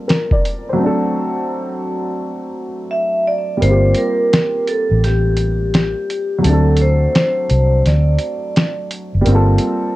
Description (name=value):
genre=lo-fi hip hop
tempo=85 BPM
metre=4/4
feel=swing 66% on 16ths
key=unclear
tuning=A4 = 441 Hz
part: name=warm upright piano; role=accompaniment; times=0.0-10.0 s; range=F#3 to D5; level=-20 LUFS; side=equal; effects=cassette tape, low-pass filter
part: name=dusty soul sampler-style drum kit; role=drums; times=0.1-9.8 s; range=hi-hat, kick drum, snare drum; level=-17 LUFS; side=equal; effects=none
part: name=vibraphone with medium hard mallets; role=melody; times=2.9-8.9 s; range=G4 to E5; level=-18 LUFS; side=equal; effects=low-pass filter, analog delay
part: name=vintage muted fingered electric bass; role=bass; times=3.6-9.6 s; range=F#1 to D2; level=-14 LUFS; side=equal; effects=none
room=moderate studio reverb, RT60 0.5 s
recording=cassette tape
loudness=-14 LUFS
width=side -17 dB against mid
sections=0.0-3.6 A section; 3.6-10.0 B section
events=filter sweep 0.0-3.6; break 0.8-3.6; kick muted 3.6-10.0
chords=0.0 Gm11; 0.8 D7; 3.6 Gm11; 6.4 D7; 9.3 Gm11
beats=0.08 | 0.79 1.49 2.20 2.90 | 3.61 4.32 5.02 5.73 | 6.43 7.14 7.84 8.55 | 9.26